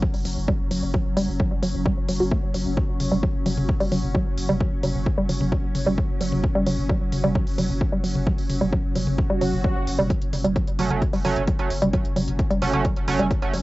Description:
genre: driving peak-time techno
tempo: 131 BPM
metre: 4/4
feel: straight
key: F# phrygian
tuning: A4 = 440 Hz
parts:
  - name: woody wave-folded pluck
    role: riff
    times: 0.0-13.6 s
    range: F#3 to F#4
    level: -25 LUFS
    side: right 1 dB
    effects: chorus, tube saturation, sidechain pumping, cassette tape, tape echo
  - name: saturated sub bass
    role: bass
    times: 0.0-13.6 s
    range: F#1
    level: -29 LUFS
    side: equal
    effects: overdrive, sidechain pumping, low-pass filter
  - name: swarming drone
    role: drone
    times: 0.0-13.6 s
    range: F#3 to C#4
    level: -31 LUFS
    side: equal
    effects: built-in reverb, sidechain pumping, cassette tape
  - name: electronic kick drum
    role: drums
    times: 0.0-13.4 s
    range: none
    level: -23 LUFS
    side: equal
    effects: overdrive, small room ambience, cassette tape
  - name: techno drum kit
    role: drums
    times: 0.1-13.6 s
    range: hi-hat, toms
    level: -29 LUFS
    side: left 1 dB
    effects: overdrive, sidechain pumping on hats, small room ambience, cassette tape, sidechain pumping on toms
  - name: swell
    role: sound effects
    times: 9.3-10.1 s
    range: none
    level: -29 LUFS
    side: right 2 dB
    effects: none
  - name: sync-sweep polysynth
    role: stabs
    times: 10.8-13.5 s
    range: F#3 to C#4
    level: -25 LUFS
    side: right 4 dB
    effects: chorus, sidechain pumping, cassette tape, tape echo
room: light reverb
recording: home recording on cassette, nothing above 7.8 kHz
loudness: -20 LUFS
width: side -18 dB against mid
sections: 0.0-13.6 A section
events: filter sweep on synth arpeggio sound 0.0-13.6; swell 9.3-10.1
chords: 0.0 F#m

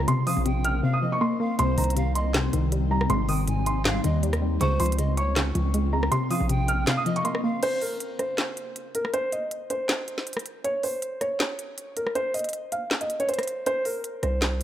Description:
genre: hip hop, trap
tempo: 159 BPM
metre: 4/4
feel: half-time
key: unclear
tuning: A4 = 438 Hz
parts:
  - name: felt-muted upright piano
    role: melody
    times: 0.0-14.6 s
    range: Bb4 to F6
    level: -28 LUFS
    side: right 1 dB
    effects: low-pass filter, slapback echo
  - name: warbly dusty pluck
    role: accompaniment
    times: 0.0-7.6 s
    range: Ab2 to Bb3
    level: -27 LUFS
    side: left 2 dB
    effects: chorus, low-pass filter
  - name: ethereal airy pad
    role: sustained chords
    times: 0.0-7.6 s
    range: C3 to F5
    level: -32 LUFS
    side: left 2 dB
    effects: ensemble chorus, built-in reverb
  - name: distorted 808-style bass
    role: bass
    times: 0.0-6.9, 14.2-14.6 s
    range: Ab1 to Eb2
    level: -26 LUFS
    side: equal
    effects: distortion
  - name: trap drum kit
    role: drums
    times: 0.1-14.6 s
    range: crash cymbal, handclaps, hi-hat, rim click, snare drum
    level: -29 LUFS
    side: equal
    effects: none
  - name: breathy polished pan flute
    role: second line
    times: 0.3-7.6 s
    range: C5 to Ab5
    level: -33 LUFS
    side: right 4 dB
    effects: slapback echo
room: light reverb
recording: none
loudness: -23 LUFS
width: side -11 dB against mid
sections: 0.0-7.6 A section; 7.6-14.6 B section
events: drums muted 0.8-1.6; kick muted 6.9-7.6, 13.7-14.0; break 7.6-13.7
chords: 0.1 Bbsus2; 1.6 Cm; 3.1 Abmaj7; 4.6 Dbmaj7; 6.1 Bbsus2; 7.6 N.C.; 13.7 Bbsus2

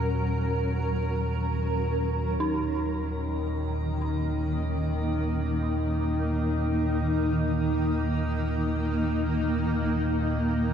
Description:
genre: dark ambient drone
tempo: free time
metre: none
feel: none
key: unclear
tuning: A4 = 440 Hz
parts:
  - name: granular cloud pad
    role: sustained chords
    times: 0.0-10.7 s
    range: Eb3 to Bb4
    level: -28 LUFS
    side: equal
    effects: built-in reverb, shimmer reverb
  - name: dark detuned synth bell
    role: arpeggios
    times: 0.0-10.7 s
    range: Eb4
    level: -35 LUFS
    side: equal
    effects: chorus, ping-pong delay, shimmer reverb
  - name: deep rumbling drone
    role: drone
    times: 0.0-10.7 s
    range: Eb2 to Bb2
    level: -28 LUFS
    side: equal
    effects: built-in reverb
  - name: metallic inharmonic drone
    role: texture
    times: 3.2-10.7 s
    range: Eb4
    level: -35 LUFS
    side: equal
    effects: chorus, built-in reverb, phaser, shimmer reverb
room: wet cathedral reverb, RT60 5.8 s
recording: dark, warm production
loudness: -25 LUFS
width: side -8 dB against mid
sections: 0.0-2.4 A section; 2.4-10.7 B section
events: none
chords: 0.0 Gb5; 2.4 Eb5

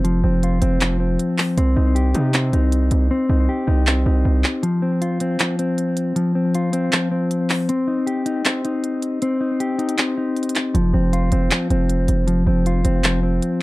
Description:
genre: hip hop, trap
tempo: 157 BPM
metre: 4/4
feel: half-time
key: unclear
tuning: A4 = 440 Hz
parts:
  - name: mellow electric guitar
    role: arpeggios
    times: 0.0-13.6 s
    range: F3 to G4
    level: -20 LUFS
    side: left 1 dB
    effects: low-pass filter, ping-pong delay
  - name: distorted 808-style bass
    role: bass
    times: 0.0-4.4, 10.7-13.4 s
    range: F1 to C3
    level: -18 LUFS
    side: right 1 dB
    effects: distortion
  - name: trap drum kit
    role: drums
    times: 0.0-13.5 s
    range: handclaps, hi-hat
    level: -22 LUFS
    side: equal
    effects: none
room: little or no reverb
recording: dark, warm production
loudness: -17 LUFS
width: side -19 dB against mid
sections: 0.0-13.6 A section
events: hi-hats muted 3.1-4.6; break 4.6-10.7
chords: 0.0 F5; 1.6 Cm; 4.6 F5; 7.7 Cm; 10.7 F5

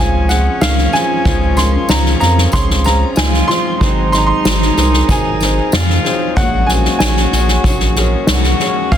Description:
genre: indie folk with a building arrangement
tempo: 94 BPM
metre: 4/4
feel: straight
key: Db major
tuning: A4 = 438 Hz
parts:
  - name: clear upright piano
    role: melody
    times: 0.0-9.0 s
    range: F5 to C6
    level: -19 LUFS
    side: right 2 dB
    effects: tape echo
  - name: warm cello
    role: second line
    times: 0.0-9.0 s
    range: Db4 to Ab4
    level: -21 LUFS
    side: right 1 dB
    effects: none
  - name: picked twelve-string acoustic guitar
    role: accompaniment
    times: 0.0-9.0 s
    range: Ab2 to Ab4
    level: -23 LUFS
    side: left 9 dB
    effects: none
  - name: warm upright piano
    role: accompaniment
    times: 0.0-9.0 s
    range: Ab1 to Eb5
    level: -23 LUFS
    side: right 1 dB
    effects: none
  - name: saturated sub bass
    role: bass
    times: 0.0-9.0 s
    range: Ab1 to F2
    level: -15 LUFS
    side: equal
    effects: none
  - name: soft-mallet drum kit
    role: drums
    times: 0.3-9.0 s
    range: kick drum, snare drum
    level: -16 LUFS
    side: equal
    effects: soft clipping on snare
  - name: tambourine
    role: percussion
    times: 0.3-8.7 s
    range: none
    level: -31 LUFS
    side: left 5 dB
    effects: none
room: studio reverb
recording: dense, heavily limited modern master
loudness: -11 LUFS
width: side -10 dB against mid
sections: 0.0-9.0 A section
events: none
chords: 0.0 Dbmaj7; 3.8 Ab7; 6.4 Gbadd9/Bb

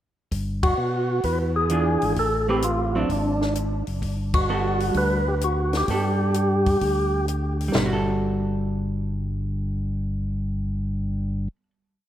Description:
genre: soul jazz organ trio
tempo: 129 BPM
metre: 4/4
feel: swing 68% on 8ths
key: G major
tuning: A4 = 440 Hz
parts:
  - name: tonewheel organ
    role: bass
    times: 0.3-11.5 s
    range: F#1 to B2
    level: -25 LUFS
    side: equal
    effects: overdrive, slow rotary speaker
  - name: compact cocktail drum kit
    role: drums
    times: 0.3-7.9 s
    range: hi-hat, kick drum, ride cymbal, snare drum, toms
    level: -28 LUFS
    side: equal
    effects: none
  - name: percussive tonewheel organ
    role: melody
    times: 0.6-7.3 s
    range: D4 to B4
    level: -24 LUFS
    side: equal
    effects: slow rotary speaker, tape echo
  - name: vintage hollow-body jazz guitar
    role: accompaniment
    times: 1.7-11.7 s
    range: E3 to B4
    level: -28 LUFS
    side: right 2 dB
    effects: none
room: moderate plate reverb, RT60 2.1 s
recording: dreamy mix soaked in reverb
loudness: -21 LUFS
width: side -12 dB against mid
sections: 0.3-7.7 A section; 7.7-11.5 final chord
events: band accent 0.5, 4.3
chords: 0.3 Gmaj7; 1.2 E7b9; 2.2 Am9; 3.1 F#sus2; 4.0 Gmaj9

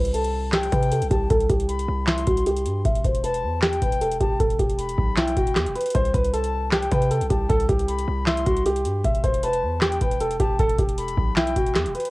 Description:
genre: hip hop, trap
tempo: 155 BPM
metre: 4/4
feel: half-time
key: E minor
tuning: A4 = 443 Hz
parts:
  - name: dark baby grand piano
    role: melody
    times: 0.0-12.1 s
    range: E4 to E5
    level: -24 LUFS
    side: right 1 dB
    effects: low-pass filter, cassette tape, tape echo
  - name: hard-hitting 808-style bass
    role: bass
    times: 0.0-11.9 s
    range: E1 to C3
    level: -26 LUFS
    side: equal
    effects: none
  - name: reedy silver concert flute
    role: second line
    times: 0.1-11.7 s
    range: G5 to C6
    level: -31 LUFS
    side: left 5 dB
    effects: cassette tape, tape echo
  - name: booming analog drum machine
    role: drums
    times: 0.1-12.1 s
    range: handclaps, hi-hat, kick drum, snare drum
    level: -24 LUFS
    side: equal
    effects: cassette tape
room: light reverb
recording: home recording on cassette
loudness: -20 LUFS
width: side -20 dB against mid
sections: 0.0-12.1 A section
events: filter sweep on grand piano 0.0-5.9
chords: 0.0 C5; 2.9 Em; 5.9 C5; 9.0 Em

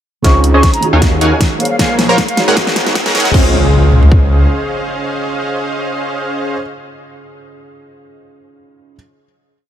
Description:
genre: future bass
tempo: 155 BPM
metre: 4/4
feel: swing 54% on 16ths, half-time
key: Db major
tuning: A4 = 444 Hz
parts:
  - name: bright baroque flute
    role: melody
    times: 0.2-2.4 s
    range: F5 to Db6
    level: -20 LUFS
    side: left 1 dB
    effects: sidechain pumping, ping-pong delay
  - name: felt-muted upright piano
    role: accompaniment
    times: 0.2-9.0 s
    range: Db3 to Eb5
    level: -22 LUFS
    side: right 2 dB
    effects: sidechain pumping, ping-pong delay
  - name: supersaw stab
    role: riff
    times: 0.2-6.6 s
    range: Ab3 to Bb5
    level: -16 LUFS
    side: right 1 dB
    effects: sidechain pumping, low-pass filter, ping-pong delay
  - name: wide detuned saw bass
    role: bass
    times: 0.2-4.5 s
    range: Ab1 to Ab2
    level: -13 LUFS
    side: equal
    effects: chorus, sidechain pumping
  - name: big-room dance drum kit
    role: drums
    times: 0.2-3.4 s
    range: crash cymbal, hi-hat, snare drum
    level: -18 LUFS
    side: left 1 dB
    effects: none
  - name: trap drum kit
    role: drums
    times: 0.2-4.2 s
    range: kick drum, toms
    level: -12 LUFS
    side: equal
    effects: none
  - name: riser and impact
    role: sound effects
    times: 1.6-6.6 s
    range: none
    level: -23 LUFS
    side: left 1 dB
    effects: none
room: light reverb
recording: high-pass filter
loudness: -10 LUFS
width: side -10 dB against mid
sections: 0.2-3.3 build; 3.3-6.4 final chord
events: build-up 0.2-3.3; drum fill 0.2-3.3; filter sweep on supersaw synth 0.2-3.3; filter sweep 0.2-3.3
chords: 0.2 Dbmaj9; 0.8 Ebm11; 1.6 Bbm9; 2.4 Ab7sus4; 3.3 Dbmaj9

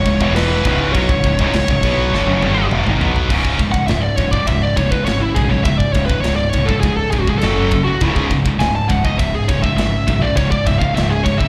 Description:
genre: heavy metal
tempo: 102 BPM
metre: 4/4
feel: straight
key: C# phrygian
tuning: A4 = 440 Hz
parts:
  - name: high-gain lead guitar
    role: melody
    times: 0.0-11.5 s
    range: E4 to A5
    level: -22 LUFS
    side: equal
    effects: distortion, tape echo
  - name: warm studio string section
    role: sustained chords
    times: 0.0-3.3 s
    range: C#3 to E4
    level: -34 LUFS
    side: equal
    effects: none
  - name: high-gain distorted guitar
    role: riff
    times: 0.0-11.5 s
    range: C#2 to B3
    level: -23 LUFS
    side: equal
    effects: distortion
  - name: scooped high-gain guitar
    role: riff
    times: 0.0-11.5 s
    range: C#2 to B3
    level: -23 LUFS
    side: equal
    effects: distortion
  - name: fingered electric bass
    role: bass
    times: 0.0-11.3 s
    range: C#1 to B1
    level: -23 LUFS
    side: equal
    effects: none
  - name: tight metal drum kit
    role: drums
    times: 0.1-11.5 s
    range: crash cymbal, kick drum, ride cymbal, snare drum, toms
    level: -24 LUFS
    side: equal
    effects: none
room: studio reverb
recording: live gig heard through the venue's PA, club reverb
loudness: -16 LUFS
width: mono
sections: 0.0-3.3 A section; 3.3-11.5 B section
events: drum fill 2.1-3.3; lead electric guitar solo 3.3-11.5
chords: 0.0 C#m; 3.3 C#5; 7.4 F#5; 8.0 C#5

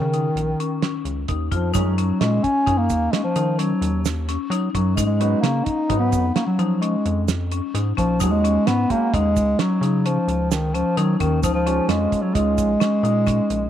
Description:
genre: progressive instrumental, band music in an uneven meter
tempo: 130 BPM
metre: 7/4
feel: straight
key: unclear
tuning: A4 = 441 Hz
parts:
  - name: mellow bass clarinet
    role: melody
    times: 0.0-13.7 s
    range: Eb3 to Eb4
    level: -20 LUFS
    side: equal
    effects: none
  - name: marimba with hard mallets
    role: arpeggios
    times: 0.0-13.5 s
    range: Db4 to F4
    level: -27 LUFS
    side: left 13 dB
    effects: none
  - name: rubbery square bass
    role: bass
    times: 0.0-13.7 s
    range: Bb1 to Gb3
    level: -24 LUFS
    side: equal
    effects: none
  - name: cloth-damped thuddy drum kit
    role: drums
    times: 0.1-13.6 s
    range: hi-hat, kick drum, snare drum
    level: -25 LUFS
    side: right 5 dB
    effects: none
  - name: warm concert grand piano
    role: accompaniment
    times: 1.7-12.7 s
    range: Eb3 to Gb4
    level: -29 LUFS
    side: right 11 dB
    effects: none
  - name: tube shaker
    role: percussion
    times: 1.7-13.4 s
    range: none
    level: -35 LUFS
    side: right 15 dB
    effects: none
room: moderate spring reverb, RT60 1.8 s, studio ambience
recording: 1960s-style stereo with parts hard left and right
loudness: -18 LUFS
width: side -10 dB against mid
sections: 0.0-1.8 A section; 1.8-13.7 B section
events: none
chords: 0.0 Eb7(no3); 1.8 Gb5; 5.0 Abm; 8.2 Ebm; 11.4 Db

